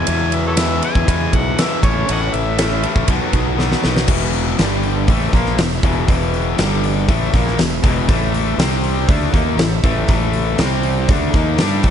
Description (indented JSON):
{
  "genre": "classic rock",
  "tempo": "120 BPM",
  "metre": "4/4",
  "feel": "straight",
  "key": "unclear",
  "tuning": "A4 = 441 Hz",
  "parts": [
    { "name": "overdriven harmonica", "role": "melody", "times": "0.0-2.8 s", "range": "A4 to G#5", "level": "-23 LUFS", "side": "equal", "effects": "none" },
    { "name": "bright tonewheel organ", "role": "sustained chords", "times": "0.0-11.9 s", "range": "A3 to G5", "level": "-32 LUFS", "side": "right 1 dB", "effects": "none" },
    { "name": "distorted electric guitar", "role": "riff", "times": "0.0-11.9 s", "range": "E2 to G4", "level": "-22 LUFS", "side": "left 15 dB", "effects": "overdrive" },
    { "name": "raw garage guitar", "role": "riff", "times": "0.0-11.9 s", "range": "E2 to G4", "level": "-25 LUFS", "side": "right 16 dB", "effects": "overdrive, spring reverb" },
    { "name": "fuzz fingered electric bass", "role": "bass", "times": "0.0-11.9 s", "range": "E1 to G2", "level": "-20 LUFS", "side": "right 1 dB", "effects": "overdrive" },
    { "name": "huge arena drum kit", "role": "drums", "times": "0.1-11.9 s", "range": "crash cymbal, hi-hat, kick drum, ride cymbal, snare drum", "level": "-18 LUFS", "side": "equal", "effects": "none" }
  ],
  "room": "little or no reverb",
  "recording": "nothing above 10.7 kHz",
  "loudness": "-14 LUFS",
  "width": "side -8 dB against mid",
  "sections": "0.0-4.1 A section; 4.1-11.9 B section",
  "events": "drum fill 3.6-4.1",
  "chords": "0.0 E; 1.8 A; 3.1 B; 4.1 E; 4.6 G5; 5.1 E; 6.6 G5; 7.1 E; 8.1 A5; 8.6 C5; 9.1 A5; 10.6 C5; 11.1 A5",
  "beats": "| 0.08 0.58 1.08 1.58 | 2.08 2.59 3.09 3.59 | 4.09 4.59 5.09 5.59 | 6.09 6.59 7.09 7.59 | 8.09 8.59 9.09 9.59 | 10.10 10.60 11.10 11.60"
}